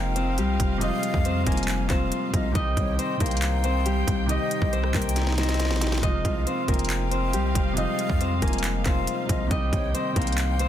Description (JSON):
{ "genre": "hip hop, trap", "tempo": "138 BPM", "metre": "4/4", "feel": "half-time", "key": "unclear", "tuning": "A4 = 440 Hz", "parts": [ { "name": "concert harp", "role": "melody", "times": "0.0-10.7 s", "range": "G3 to Eb5", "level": "-28 LUFS", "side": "left 2 dB", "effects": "low-pass filter, tape echo" }, { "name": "breathy mellow concert flute", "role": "second line", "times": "0.0-10.7 s", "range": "Db5 to Ab5", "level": "-34 LUFS", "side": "left 8 dB", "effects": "tape echo" }, { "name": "dark concert grand piano", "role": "accompaniment", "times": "0.0-10.7 s", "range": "C3 to G4", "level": "-32 LUFS", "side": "right 3 dB", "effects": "low-pass filter" }, { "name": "dark studio string section", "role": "sustained chords", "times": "0.0-10.7 s", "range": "Eb4 to G5", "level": "-37 LUFS", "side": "right 2 dB", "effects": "none" }, { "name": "long sustained 808-style bass", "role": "bass", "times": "0.0-10.7 s", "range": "F1 to F2", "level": "-27 LUFS", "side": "equal", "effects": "none" }, { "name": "trap drum kit", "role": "drums", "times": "0.2-10.7 s", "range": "handclaps, hi-hat, kick drum, rim click, snare drum", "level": "-27 LUFS", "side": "equal", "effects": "none" } ], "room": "studio reverb", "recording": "dense, heavily limited modern master", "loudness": "-22 LUFS", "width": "side -10 dB against mid", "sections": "0.0-6.0 A section; 6.0-10.7 A section", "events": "drum fill 5.2-6.0", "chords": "0.0 Fm7; 2.6 Cm; 6.0 Fm7; 9.5 Cm" }